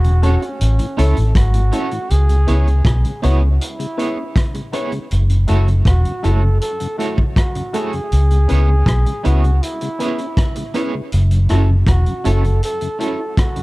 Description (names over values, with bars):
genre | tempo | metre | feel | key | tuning
roots reggae | 80 BPM | 4/4 | straight | C# minor | A4 = 435 Hz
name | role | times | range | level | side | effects
breathy flugelhorn | melody | 0.0-13.6 s | C#4 to A4 | -26 LUFS | right 1 dB | tape echo
mellow tonewheel organ | accompaniment | 0.0-13.6 s | F#2 to F#4 | -28 LUFS | left 1 dB | chorus vibrato, slow rotary speaker, tape echo
vintage muted fingered electric bass | bass | 0.0-12.6 s | E1 to C#2 | -13 LUFS | equal | none
vintage drum kit | drums | 0.0-13.6 s | hi-hat, kick drum, rim click | -19 LUFS | equal | none
electric guitar at the edge of break-up | accompaniment | 0.2-13.6 s | A3 to C#5 | -26 LUFS | right 5 dB | tremolo, tape echo
warm upright piano | stabs | 0.2-13.1 s | C#4 to C#5 | -26 LUFS | left 3 dB | none
room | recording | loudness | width
little or no reverb | dark, warm production | -14 LUFS | side -21 dB against mid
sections
0.0-2.1 A section; 2.1-13.6 B section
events
none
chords
0.0 F#m; 0.6 A; 2.1 C#m7; 5.1 F#m7; 8.1 C#m7; 11.1 F#m7